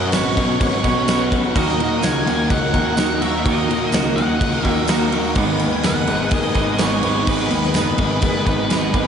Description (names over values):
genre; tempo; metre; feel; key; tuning
rock, shoegaze and dream pop; 126 BPM; 4/4; straight; unclear; A4 = 440 Hz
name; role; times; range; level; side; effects
octave-fuzz lead guitar; melody; 0.0-9.1 s; B4 to G#5; -25 LUFS; right 2 dB; distortion, diffuse ambient delay
phased string machine; sustained chords; 0.0-9.1 s; A#4 to D#6; -28 LUFS; equal; ensemble chorus, phaser
electric guitar through a small old amp; arpeggios; 0.0-9.1 s; D#3 to F#4; -29 LUFS; left 1 dB; none
overdriven semi-hollow guitar; riff; 0.0-9.1 s; G#2 to G#4; -23 LUFS; left 7 dB; wide subtle chorus
overdriven semi-hollow guitar; riff; 0.0-9.1 s; D#3 to B4; -23 LUFS; right 9 dB; reverse reverb
dark grand piano; bass; 0.0-9.1 s; F#1 to A#2; -23 LUFS; equal; none
big rock drum kit; drums; 0.1-9.0 s; crash cymbal, kick drum, snare drum; -22 LUFS; equal; none
tambourine; percussion; 0.1-8.8 s; none; -34 LUFS; right 8 dB; none
room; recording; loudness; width
moderate lush hall reverb, RT60 1.8 s, studio ambience; dreamy mix soaked in reverb, nothing above 10.6 kHz; -16 LUFS; side -7 dB against mid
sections
0.0-9.1 A section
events
none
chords
0.0 Bsus2; 1.6 D#m7; 5.4 G#m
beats
0.13 0.61 1.08 | 1.56 2.03 2.51 2.98 | 3.46 3.93 4.41 4.88 | 5.36 5.84 6.31 6.79 | 7.26 7.74 8.22 8.69